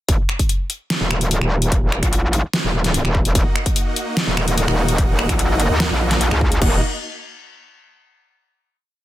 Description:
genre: heavy wobble dubstep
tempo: 147 BPM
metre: 4/4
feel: half-time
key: Eb minor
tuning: A4 = 440 Hz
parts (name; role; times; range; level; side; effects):
- metallic wobble bass; bass; 0.1-6.8 s; Eb1 to Eb2; -18 LUFS; equal; chorus, overdrive
- dubstep drum kit; drums; 0.1-6.7 s; crash cymbal, finger snaps, hi-hat, snare drum; -22 LUFS; equal; overdrive
- electronic kick drum; drums; 0.1-6.7 s; none; -18 LUFS; equal; none
- supersaw chords; sustained chords; 3.4-6.8 s; Bb3 to Gb5; -24 LUFS; right 1 dB; sidechain pumping
room: light reverb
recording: dense, heavily limited modern master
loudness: -16 LUFS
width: side -14 dB against mid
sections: 0.1-6.6 drop; 6.6-8.2 final chord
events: drop 0.1-6.6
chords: 0.1 Ebm

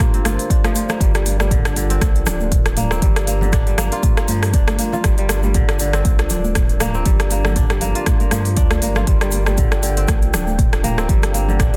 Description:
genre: afro house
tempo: 119 BPM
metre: 4/4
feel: swing 56% on 16ths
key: G minor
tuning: A4 = 439 Hz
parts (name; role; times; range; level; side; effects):
- dark analog pad; sustained chords; 0.1-11.8 s; G3 to G5; -31 LUFS; equal; chorus, phaser, sidechain pumping
- kora; arpeggios; 0.0-11.8 s; D3 to F4; -27 LUFS; equal; sidechain pumping, dub echo
- afro-pop drum kit; drums; 0.0-11.8 s; hi-hat, rim click, toms; -25 LUFS; equal; soft clipping on snare
- electronic kick drum; drums; 0.0-11.7 s; none; -20 LUFS; equal; none
- congas; percussion; 0.0-11.6 s; none; -30 LUFS; equal; none
- egg shaker; percussion; 0.0-11.8 s; none; -35 LUFS; equal; none
- warm sub bass; bass; 0.3-11.8 s; D1 to G2; -23 LUFS; equal; tube saturation, sidechain pumping
room: digital ambience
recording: dense, heavily limited modern master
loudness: -17 LUFS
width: mono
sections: 0.0-11.8 A section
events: none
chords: 0.0 Gm7

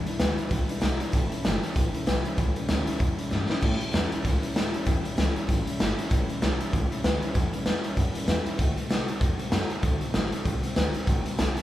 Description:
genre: rockabilly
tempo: 193 BPM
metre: 4/4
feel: swing 58% on 8ths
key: A mixolydian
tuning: A4 = 440 Hz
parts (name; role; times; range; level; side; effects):
- picked steel-string acoustic guitar; accompaniment; 0.0-11.6 s; E2 to F#4; -33 LUFS; left 2 dB; none
- upright bass; bass; 0.0-11.6 s; G1 to A2; -30 LUFS; equal; none
- raw garage drum kit; drums; 0.1-11.6 s; crash cymbal, hi-hat, kick drum, snare drum; -26 LUFS; equal; none
room: light reverb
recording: band playing live in one room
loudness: -24 LUFS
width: side -14 dB against mid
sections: 0.0-3.6 A section; 3.6-11.6 A section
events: drum fill 3.3-3.6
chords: 0.0 E7; 1.1 A7; 8.6 D7

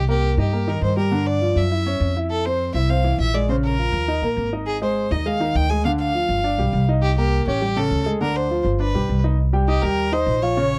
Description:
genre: Afro-Cuban jazz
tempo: 203 BPM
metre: 4/4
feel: straight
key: C minor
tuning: A4 = 440 Hz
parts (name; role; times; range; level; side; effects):
- clear fiddle; melody; 0.0-10.8 s; G4 to Ab5; -26 LUFS; equal; none
- upright bass; bass; 0.0-10.8 s; G1 to G2; -24 LUFS; equal; none
- warm concert grand piano; accompaniment; 0.1-10.8 s; Db3 to Eb6; -26 LUFS; equal; none
room: little or no reverb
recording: dry, close 1970s-style studio recording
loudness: -21 LUFS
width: mono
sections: 0.0-9.4 A section; 9.4-10.8 B section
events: none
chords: 0.0 Cm7; 1.1 G5; 1.7 F#5; 2.3 F5; 3.5 Bbm; 4.1 Eb5; 4.7 Ab6; 5.8 Dmadd11; 6.4 G7; 7.0 Cm7; 7.6 A7; 8.2 Gm7; 8.8 G; 9.4 Cm7

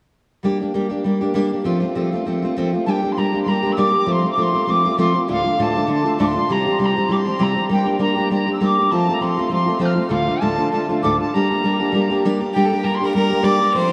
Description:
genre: celtic folk, Celtic reel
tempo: 198 BPM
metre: 4/4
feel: swing 53% on 8ths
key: G minor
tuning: A4 = 440 Hz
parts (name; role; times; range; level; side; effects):
- fingerpicked plugged-in steel-string acoustic guitar; accompaniment; 0.4-13.9 s; D2 to G4; -21 LUFS; equal; subtle chorus
- tin whistle; melody; 2.9-13.9 s; F5 to G6; -23 LUFS; equal; analog delay
- rich fiddle; second line; 12.5-13.9 s; G4 to D5; -25 LUFS; equal; none
room: wet huge ambient reverb, RT60 8.9 s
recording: dreamy mix soaked in reverb, small room ambience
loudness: -19 LUFS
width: mono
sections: 0.4-2.9 A section; 2.9-12.5 B section; 12.5-13.9 B section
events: none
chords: 0.4 Gm; 1.7 F; 2.9 Gm; 4.1 F; 5.3 Dm; 6.5 C; 7.7 Gm; 8.9 F; 10.1 Dm; 11.3 Gm

